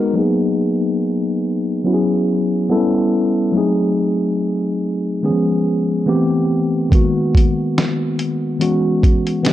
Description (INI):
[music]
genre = lo-fi hip hop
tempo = 71 BPM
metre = 4/4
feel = swing 58% on 16ths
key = G# minor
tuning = A4 = 439 Hz
[part]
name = mellow tine electric piano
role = accompaniment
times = 0.0-9.5 s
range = D#3 to A#4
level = -16 LUFS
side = left 1 dB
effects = medium stereo tremolo, cassette tape, low-pass filter
[part]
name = lo-fi sampler-style drum kit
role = drums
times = 6.9-9.5 s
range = hi-hat, kick drum, snare drum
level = -15 LUFS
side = right 1 dB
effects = vintage 12-bit sampler grit
[sound]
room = light reverb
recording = dark, warm production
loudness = -15 LUFS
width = side -13 dB against mid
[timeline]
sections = 0.2-9.5 A section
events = filter sweep on tine electric piano 0.2-9.5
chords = 0.2 G#m9; 1.9 E69; 2.7 A9; 3.5 G#7b9; 5.2 C#7; 6.1 Am9; 6.9 G#m9; 8.6 E69